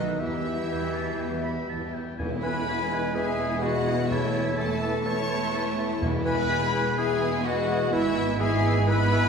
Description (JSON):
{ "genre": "classical, dramatic, fast romantic movement for symphony orchestra", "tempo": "125 BPM", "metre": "4/4", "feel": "straight", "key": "E major", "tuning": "A4 = 436 Hz", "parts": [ { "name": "warm symphonic violin section", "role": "melody", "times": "0.0-9.3 s", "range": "E5 to C#6", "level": "-35 LUFS", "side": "left 4 dB", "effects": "none" }, { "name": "clear clarinet", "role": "second line", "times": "0.0-9.3 s", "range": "E4 to C#5", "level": "-33 LUFS", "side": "left 1 dB", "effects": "none" }, { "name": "clear oboe", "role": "second line", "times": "0.0-9.2 s", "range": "E5 to B5", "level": "-39 LUFS", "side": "right 1 dB", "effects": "none" }, { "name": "rich symphonic violin section", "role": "second line", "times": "0.0-9.3 s", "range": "A3 to G4", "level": "-38 LUFS", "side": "left 2 dB", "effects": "none" }, { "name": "silver concert flute", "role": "second line", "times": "0.0-9.3 s", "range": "B4 to A5", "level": "-34 LUFS", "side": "left 2 dB", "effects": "none" }, { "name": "mellow bassoon", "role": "accompaniment", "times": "0.0-9.2 s", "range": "B2 to E3", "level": "-36 LUFS", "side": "equal", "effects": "none" }, { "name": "rich symphonic viola section", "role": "accompaniment", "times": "0.0-9.3 s", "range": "E3 to B3", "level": "-35 LUFS", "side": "right 2 dB", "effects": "none" }, { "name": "dark French horn section", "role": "sustained chords", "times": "0.0-9.3 s", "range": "D#3 to B4", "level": "-34 LUFS", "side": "left 3 dB", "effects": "none" }, { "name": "warm trumpet section", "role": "stabs", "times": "0.0-9.3 s", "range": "D#4 to C#5", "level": "-32 LUFS", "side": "equal", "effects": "none" }, { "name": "clear symphonic double bass section", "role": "bass", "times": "0.0-9.3 s", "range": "E1 to E2", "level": "-34 LUFS", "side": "right 1 dB", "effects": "none" }, { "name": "rich symphonic cello section", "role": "bass", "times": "0.0-9.3 s", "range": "E2 to E3", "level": "-31 LUFS", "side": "right 1 dB", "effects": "none" }, { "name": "warm trombone section", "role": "sustained chords", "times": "2.2-9.3 s", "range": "E3 to A3", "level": "-35 LUFS", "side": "right 6 dB", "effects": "none" }, { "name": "tam-tam", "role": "percussion", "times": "2.2-4.1 s", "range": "none", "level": "-41 LUFS", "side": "left 2 dB", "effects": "none" }, { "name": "timpani", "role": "percussion", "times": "2.2-6.7 s", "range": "E2", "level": "-34 LUFS", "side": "left 1 dB", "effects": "none" } ], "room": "wet scoring stage reverb, RT60 1.6 s", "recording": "heard from further back in the room", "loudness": "-24 LUFS", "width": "side -6 dB against mid", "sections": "0.0-2.2 A section; 2.2-9.3 B section", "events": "band accent 2.2-2.7", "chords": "0.2 Em; 2.2 E; 4.1 A/E; 6.0 E; 7.9 E/G#" }